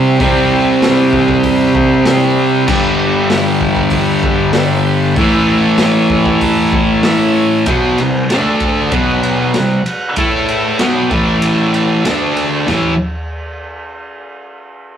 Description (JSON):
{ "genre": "garage rock duo or trio", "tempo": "96 BPM", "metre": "4/4", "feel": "straight", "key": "unclear", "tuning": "A4 = 440 Hz", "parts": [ { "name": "combo organ", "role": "sustained chords", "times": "0.0-13.0 s", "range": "D4 to A5", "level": "-23 LUFS", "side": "left 1 dB", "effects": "spring reverb" }, { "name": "fuzz guitar", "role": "riff", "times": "0.0-12.9 s", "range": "G2 to A4", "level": "-11 LUFS", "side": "equal", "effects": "distortion" }, { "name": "raw garage drum kit", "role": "drums", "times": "0.2-12.8 s", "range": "crash cymbal, hi-hat, kick drum, ride cymbal, snare drum, toms", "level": "-19 LUFS", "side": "equal", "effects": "none" } ], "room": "moderate studio reverb, RT60 0.6 s", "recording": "rough rehearsal-room recording, warm saturation", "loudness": "-10 LUFS", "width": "side -9 dB against mid", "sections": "0.0-7.7 A section; 7.7-12.7 B section; 12.7-15.0 C section", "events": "none", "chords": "0.0 C; 2.7 G; 5.2 A; 7.7 C5; 8.3 D5; 8.9 B5; 10.2 A5; 10.8 C5; 11.1 A5; 12.1 D5; 12.7 A" }